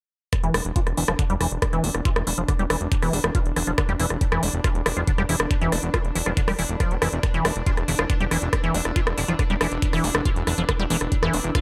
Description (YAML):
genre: psychedelic trance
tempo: 139 BPM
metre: 4/4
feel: straight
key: unclear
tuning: A4 = 440 Hz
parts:
  - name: pulsing gated texture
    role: sustained chords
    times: 0.6-11.6 s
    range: D4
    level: -35 LUFS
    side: equal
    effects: chorus, built-in reverb, sidechain pumping
  - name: drum and bass drum kit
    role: drums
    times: 0.3-11.6 s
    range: hi-hat, rim click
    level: -29 LUFS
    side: equal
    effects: none
  - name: electronic kick drum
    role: drums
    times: 0.3-11.6 s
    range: none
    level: -25 LUFS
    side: equal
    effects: none
  - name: warbly tape-like pad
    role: texture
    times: 1.9-11.6 s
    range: E4 to E6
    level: -43 LUFS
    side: equal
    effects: none
  - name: liquid acid bass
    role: riff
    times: 0.4-11.6 s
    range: D3 to F4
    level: -30 LUFS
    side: equal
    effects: chorus, sidechain pumping, delay
  - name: fat analog bass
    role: bass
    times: 0.4-11.5 s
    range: E1 to F1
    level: -29 LUFS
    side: equal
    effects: none
room: little or no reverb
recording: none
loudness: -23 LUFS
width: mono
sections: 0.3-11.6 A section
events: none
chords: 0.3 E5